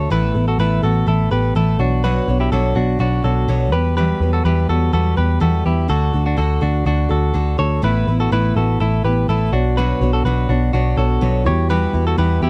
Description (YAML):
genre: indie pop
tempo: 124 BPM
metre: 4/4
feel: straight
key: unclear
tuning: A4 = 440 Hz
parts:
  - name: picked steel-string acoustic guitar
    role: accompaniment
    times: 0.0-12.5 s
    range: E2 to C#5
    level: -24 LUFS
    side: equal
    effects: none
  - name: direct-recorded clean electric guitar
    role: arpeggios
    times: 0.0-12.5 s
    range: D4 to C#5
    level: -24 LUFS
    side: equal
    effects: none
  - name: vintage muted picked electric bass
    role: bass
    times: 0.0-12.5 s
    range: A1 to E2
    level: -20 LUFS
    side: equal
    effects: none
room: little or no reverb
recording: dry, close 1970s-style studio recording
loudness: -17 LUFS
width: mono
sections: 0.0-12.5 A section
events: none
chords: 0.1 Asus2; 1.8 Bmadd9; 3.7 Emadd9; 5.9 D; 7.8 Asus2; 9.5 Bmadd9; 11.5 Emadd9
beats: | 0.11 0.59 1.07 1.56 | 2.04 2.52 3.00 3.49 | 3.97 4.45 4.93 5.42 | 5.90 6.38 6.87 7.35 | 7.83 8.32 8.80 9.29 | 9.77 10.25 10.74 11.22 | 11.70 12.19